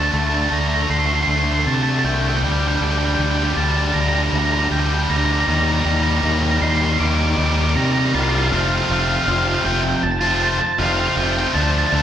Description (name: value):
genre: post-rock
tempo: 79 BPM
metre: 4/4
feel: straight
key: unclear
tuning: A4 = 439 Hz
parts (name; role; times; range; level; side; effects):
- octave-fuzz lead guitar; melody; 0.0-12.0 s; F5 to D6; -21 LUFS; right 2 dB; distortion
- distorted electric guitar; riff; 0.0-12.0 s; F2 to F4; -20 LUFS; equal; overdrive
- growling fingered electric bass; bass; 0.0-12.0 s; F1 to C3; -20 LUFS; equal; overdrive
room: wet large studio reverb, RT60 1.5 s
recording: band playing live in one room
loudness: -16 LUFS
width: side -10 dB against mid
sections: 0.0-8.5 A section; 8.5-12.0 B section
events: build-up 0.0-8.5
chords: 0.0 D5; 2.4 Gm/D; 5.5 Cmadd9/Eb; 8.5 F